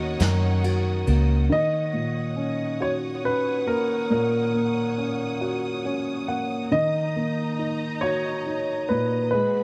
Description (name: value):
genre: six-eight pop ballad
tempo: 46 BPM (dotted quarters)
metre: 6/8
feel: straight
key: Eb minor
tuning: A4 = 441 Hz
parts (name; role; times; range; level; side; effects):
- warm baby grand piano; melody; 0.0-9.6 s; Bb4 to Eb5; -28 LUFS; equal; delay
- dark upright piano; accompaniment; 0.0-9.6 s; Bb2 to Gb5; -29 LUFS; equal; none
- warm symphonic string section; sustained chords; 0.0-9.6 s; D#4 to Eb6; -38 LUFS; equal; none
- picked steel-string acoustic guitar; arpeggios; 0.0-2.0 s; Eb3 to Bb4; -38 LUFS; equal; none
- vintage muted fingered electric bass; bass; 0.0-1.5 s; Db2 to Gb2; -23 LUFS; equal; none
- soft brush drum kit; drums; 0.2-1.3 s; ride cymbal, snare drum; -34 LUFS; equal; none
room: light reverb, small room ambience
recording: dark, warm production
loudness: -24 LUFS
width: mono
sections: 0.0-1.5 A section; 1.5-9.6 A section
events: upright piano fill 5.4-6.7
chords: 0.0 Ebm7; 6.7 Bmaj9 (rootless)